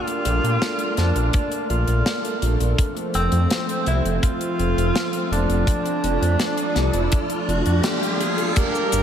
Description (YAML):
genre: synthwave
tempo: 83 BPM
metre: 4/4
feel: straight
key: D minor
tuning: A4 = 437 Hz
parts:
  - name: mellow tenor saxophone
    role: melody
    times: 0.0-9.0 s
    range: C4 to Bb4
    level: -25 LUFS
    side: right 1 dB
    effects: vintage 12-bit sampler grit, tape echo, shimmer reverb
  - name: lush unison pad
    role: sustained chords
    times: 0.0-9.0 s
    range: F3 to D4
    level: -25 LUFS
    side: equal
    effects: chorus, sidechain pumping, shimmer reverb
  - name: tight metal drum kit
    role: drums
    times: 0.1-9.0 s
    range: cabasa, crash cymbal, hi-hat, snare drum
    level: -28 LUFS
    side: left 1 dB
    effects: none
  - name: dark detuned saw bass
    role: bass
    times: 0.3-9.0 s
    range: F1 to Bb2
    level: -20 LUFS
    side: equal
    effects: none
  - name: kick drum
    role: drums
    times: 1.3-8.7 s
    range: none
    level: -20 LUFS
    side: equal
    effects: none
  - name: riser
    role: sound effects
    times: 5.2-8.6 s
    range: none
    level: -30 LUFS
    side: equal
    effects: none
  - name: analog synth brass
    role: stabs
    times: 8.6-9.0 s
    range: Bb3 to G4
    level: -26 LUFS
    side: right 5 dB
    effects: chorus, cassette tape
room: wet cathedral reverb, RT60 5.9 s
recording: dreamy mix soaked in reverb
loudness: -19 LUFS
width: side -9 dB against mid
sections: 0.0-8.6 A section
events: riser 5.2-8.6; band accent 7.8-8.2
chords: 0.0 Bbmaj7; 2.8 F; 5.7 Dm/F